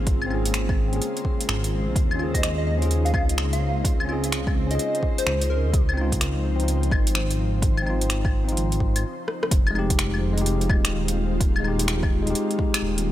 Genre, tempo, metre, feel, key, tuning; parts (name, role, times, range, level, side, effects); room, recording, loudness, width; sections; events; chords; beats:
future garage; 127 BPM; 4/4; swing 64% on 16ths; F minor; A4 = 440 Hz
bell-like tine electric piano; accompaniment; 0.0-13.1 s; Ab3 to Ab4; -29 LUFS; left 2 dB; vintage 12-bit sampler grit, sidechain pumping, tape echo
ethereal airy pad; sustained chords; 0.0-13.1 s; Db3 to C5; -32 LUFS; equal; ensemble chorus, built-in reverb, sidechain pumping
dark detuned saw bass; bass; 0.0-13.1 s; Eb1 to Eb2; -24 LUFS; equal; sidechain pumping
backwards swelling texture; texture; 0.0-9.0 s; C4 to C5; -37 LUFS; right 1 dB; built-in reverb
deep house drum kit; drums; 0.1-13.0 s; claves, finger snaps, hi-hat, rim click; -28 LUFS; left 1 dB; overdrive
electronic kick drum; drums; 0.1-12.7 s; -23 LUFS; equal; overdrive
plucky unison lead; melody; 2.3-5.8 s; Bb4 to F5; -30 LUFS; equal; tape echo
light reverb; -20 LUFS; side -13 dB against mid
0.0-9.5 A section; 9.5-13.1 B section
break 9.0-9.5; drum fill 9.3
0.0 Bbm7; 2.0 Eb7sus4; 5.7 Dbmaj9; 9.5 Fm7
| 0.07 0.54 1.01 1.49 | 1.96 2.43 2.90 3.38 | 3.85 4.32 4.79 5.27 | 5.74 6.21 6.68 7.16 | 7.63 8.10 8.57 9.05 | 9.52 9.99 10.46 10.94 | 11.41 11.88 12.35 12.82